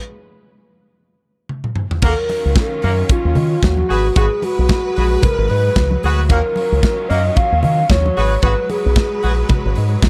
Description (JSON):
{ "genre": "disco", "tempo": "112 BPM", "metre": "4/4", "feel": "swing 56% on 16ths", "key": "Eb minor", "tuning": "A4 = 439 Hz", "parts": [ { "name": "modern studio drum kit", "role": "drums", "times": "1.5-10.1 s", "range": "crash cymbal, hi-hat, kick drum, snare drum, toms", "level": "-19 LUFS", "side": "equal", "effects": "none" }, { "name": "clear studio string section", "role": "sustained chords", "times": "2.0-10.1 s", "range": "Eb3 to Cb5", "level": "-29 LUFS", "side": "equal", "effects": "none" }, { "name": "warm horn section", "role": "stabs", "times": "2.0-9.3 s", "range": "Bb3 to Cb5", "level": "-25 LUFS", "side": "equal", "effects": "none" }, { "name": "fingered electric bass with an envelope filter", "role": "bass", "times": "2.0-10.1 s", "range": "Ab1 to Eb3", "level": "-19 LUFS", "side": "equal", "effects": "none" }, { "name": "congas", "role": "percussion", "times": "2.0-10.1 s", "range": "none", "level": "-26 LUFS", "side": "equal", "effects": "none" }, { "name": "mellow wooden-headed alto flute", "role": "melody", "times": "2.1-9.8 s", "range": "F4 to F5", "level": "-22 LUFS", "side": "equal", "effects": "none" } ], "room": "small room reverb", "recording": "dark, warm production", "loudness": "-16 LUFS", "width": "mono", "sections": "0.0-2.0 A section; 2.0-10.1 B section", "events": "stop 0.0-2.0; drum fill 1.5-2.0", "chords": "0.0 N.C.; 2.0 Ebm9; 3.9 Abm7; 6.3 Ebm9; 8.2 Abm7" }